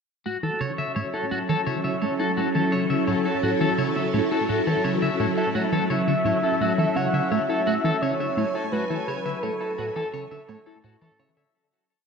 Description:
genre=ambient, sequencer-driven space music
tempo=85 BPM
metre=4/4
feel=straight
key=A major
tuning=A4 = 437 Hz
part: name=phased string machine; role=sustained chords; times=0.5-11.6 s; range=F#3 to G#5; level=-26 LUFS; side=equal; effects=ensemble chorus, phaser, shimmer reverb
part: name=electric guitar at the edge of break-up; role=arpeggios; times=0.3-11.5 s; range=F#4 to E5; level=-28 LUFS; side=left 2 dB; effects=auto-pan, shimmer reverb, ping-pong delay
part: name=tight sequenced synth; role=riff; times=0.3-11.4 s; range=A2 to E4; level=-28 LUFS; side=equal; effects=chorus, phaser, ping-pong delay
part: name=breathy flute-like synth lead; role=melody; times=5.9-10.8 s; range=A4 to F#5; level=-26 LUFS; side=equal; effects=chorus, shimmer reverb, ping-pong delay
room=wet spring reverb, RT60 2.4 s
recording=echo-heavy mix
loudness=-22 LUFS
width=side -5 dB against mid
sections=0.3-11.6 A section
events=filter sweep on synth arpeggio sound 0.3-11.6; fade-out 7.8-11.6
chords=0.3 A6

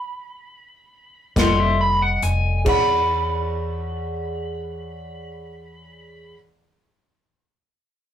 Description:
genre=slow blues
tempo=46 BPM (dotted quarters)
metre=12/8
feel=straight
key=E mixolydian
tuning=A4 = 440 Hz
part: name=electric slide guitar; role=second line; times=0.0-6.4 s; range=E5 to C6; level=-23 LUFS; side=equal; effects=none
part: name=dark grand piano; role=accompaniment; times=1.4-6.4 s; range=G3 to F#5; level=-26 LUFS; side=right 2 dB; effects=none
part: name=upright bass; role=bass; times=1.4-6.3 s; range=F1 to E2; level=-26 LUFS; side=left 1 dB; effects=none
part: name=natural country drum kit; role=drums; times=1.4-2.9 s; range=crash cymbal, hi-hat, kick drum, snare drum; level=-24 LUFS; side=left 2 dB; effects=none
room=moderate studio reverb, RT60 0.5 s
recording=rough rehearsal-room recording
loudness=-19 LUFS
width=side -9 dB against mid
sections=0.0-2.7 A section; 2.7-7.9 B section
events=slowing down 0.0-2.7; electric slide guitar solo 0.0-2.7; stop 0.0-1.4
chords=0.0 N.C.; 1.4 F9; 2.7 E13

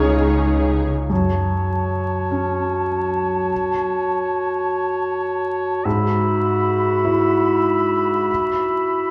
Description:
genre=cinematic, emotional film score for orchestra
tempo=50 BPM (dotted quarters)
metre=6/8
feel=uneven beats, rubato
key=F# dorian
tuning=A4 = 440 Hz
part: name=muted studio violin section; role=melody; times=0.0-0.6 s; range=C#5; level=-36 LUFS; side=equal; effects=none
part: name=muted studio violin section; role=second line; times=0.0-0.9 s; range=G#4 to C#5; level=-30 LUFS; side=equal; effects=none
part: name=felt-muted upright piano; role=accompaniment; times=0.0-9.1 s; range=C#2 to G#4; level=-24 LUFS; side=equal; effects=none
part: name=muted studio viola section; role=accompaniment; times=0.0-0.9 s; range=G#3 to D#4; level=-31 LUFS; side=equal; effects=none
part: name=muted studio cello section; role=bass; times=0.0-0.8 s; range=C#3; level=-30 LUFS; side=equal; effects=none
part: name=muted studio double bass section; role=bass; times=0.0-0.9 s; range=C#2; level=-25 LUFS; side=equal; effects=none
part: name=clear oboe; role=second line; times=1.1-9.1 s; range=C#5 to E5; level=-29 LUFS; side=equal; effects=none
part: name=concert flute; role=second line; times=1.1-9.1 s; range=A5 to B5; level=-28 LUFS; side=equal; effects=none
part: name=warm clarinet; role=second line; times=1.1-9.1 s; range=F#4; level=-24 LUFS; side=equal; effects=none
room=wet recital hall reverb, RT60 1.8 s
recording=recorded in a church or concert hall, vinyl crackle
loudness=-20 LUFS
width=mono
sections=0.0-1.1 A section; 1.1-9.1 B section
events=none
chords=0.0 C#sus2; 1.1 F#m; 5.9 Eadd9/G#

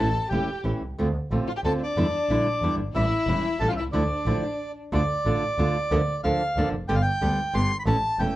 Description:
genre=tango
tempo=183 BPM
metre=3/4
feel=rubato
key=D minor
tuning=A4 = 442 Hz
part: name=bandoneon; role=melody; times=0.0-8.4 s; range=D5 to C6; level=-27 LUFS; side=equal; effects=none
part: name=dark studio violin section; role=second line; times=0.0-4.7 s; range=D4 to A4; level=-30 LUFS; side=left 3 dB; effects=none
part: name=nylon-string guitar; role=accompaniment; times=0.0-8.4 s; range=D3 to A4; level=-28 LUFS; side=right 1 dB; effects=none
part: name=rich double bass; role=bass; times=0.0-8.3 s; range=E1 to E2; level=-27 LUFS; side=equal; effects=none
room=light reverb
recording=worn, warbling old tape, cassette tape, warbly pitch drift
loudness=-22 LUFS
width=side -15 dB against mid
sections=0.0-4.9 A section; 4.9-8.4 A section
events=stop 4.6-4.9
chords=0.0 A; 1.0 Dm7; 2.0 Em7b5; 2.9 A7; 3.9 Dmadd9; 4.9 Dm; 5.9 Bbmaj7/D; 6.9 G

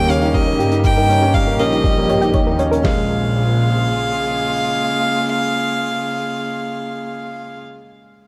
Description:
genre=piano and strings electronica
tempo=120 BPM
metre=4/4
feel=straight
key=Bb dorian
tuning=A4 = 441 Hz
part: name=clear violin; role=melody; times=0.0-7.6 s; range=Eb5 to G5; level=-23 LUFS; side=equal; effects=delay
part: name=muted string quartet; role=sustained chords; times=0.0-7.6 s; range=Db3 to Ab4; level=-27 LUFS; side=equal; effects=sidechain pumping
part: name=soft round pluck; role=arpeggios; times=0.0-3.1 s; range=G4 to G5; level=-28 LUFS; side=equal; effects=chorus, vintage 12-bit sampler grit, sidechain pumping, delay
part: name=clear upright piano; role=riff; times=0.0-8.3 s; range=G3 to G4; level=-24 LUFS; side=equal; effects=delay
part: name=warm studio double bass section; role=bass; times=0.0-4.3 s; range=Bb1 to G2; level=-22 LUFS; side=equal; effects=sidechain pumping
part: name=hi-hat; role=drums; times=0.1-2.8 s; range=none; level=-41 LUFS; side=equal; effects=none
part: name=lo-fi sampler-style drum kit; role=drums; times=0.3-3.0 s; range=hi-hat, kick drum, snare drum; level=-21 LUFS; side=equal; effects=none
room=moderate lush hall reverb, RT60 1.7 s, small room ambience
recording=none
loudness=-17 LUFS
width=mono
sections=0.0-2.8 A section; 2.8-6.8 B section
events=drop 0.0-2.8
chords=0.0 Eb7; 2.8 Bbm7

